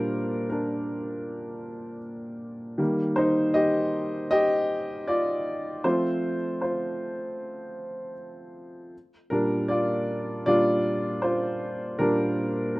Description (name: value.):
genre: pop.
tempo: 78 BPM.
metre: 4/4.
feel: straight.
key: Bb major.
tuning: A4 = 440 Hz.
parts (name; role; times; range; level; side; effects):
clear upright piano; solo; 0.0-12.8 s; Bb2 to Eb5; -25 LUFS; equal; none.
room: small room ambience.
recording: rough home demo mix.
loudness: -24 LUFS.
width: side -21 dB against mid.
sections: 0.0-12.8 A section.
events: upright piano solo 0.0-12.8.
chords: 0.0 Bb6; 2.8 Ebadd9; 5.8 F; 8.9 Bb6.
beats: 0.51 1.27 2.03 | 2.79 3.55 4.32 5.08 | 5.85 6.61 7.38 8.15 | 8.93 9.70 10.47 11.24 | 12.00 12.76.